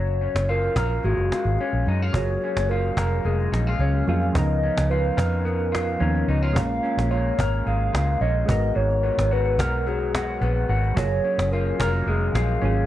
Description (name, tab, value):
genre	indie pop, bedroom pop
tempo	109 BPM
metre	4/4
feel	straight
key	F# major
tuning	A4 = 441 Hz
part	hollow clarinet-like synth lead	melody	0.0-12.9 s	F#4 to E#5	-27 LUFS	equal	wide subtle chorus, analog delay
part	electric guitar through a small old amp	accompaniment	0.0-12.9 s	G#2 to A#4	-28 LUFS	left 2 dB	lush chorus, warbly pitch drift
part	vintage muted fingered electric bass	bass	0.0-12.8 s	E#1 to F#2	-23 LUFS	equal	none
part	cajon	drums	0.1-12.8 s	none	-27 LUFS	equal	vintage 12-bit sampler grit
part	soft electric-piano-like synth keys	accompaniment	2.1-12.9 s	E#3 to A#4	-30 LUFS	right 4 dB	chorus, phaser
room	digital ambience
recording	none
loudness	-20 LUFS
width	side -13 dB against mid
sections	0.0-2.1 A section; 2.1-12.9 A section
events	none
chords	0.0 F#maj9; 4.3 C#13; 6.6 A#m7; 8.5 G#m9; 11.0 F#maj9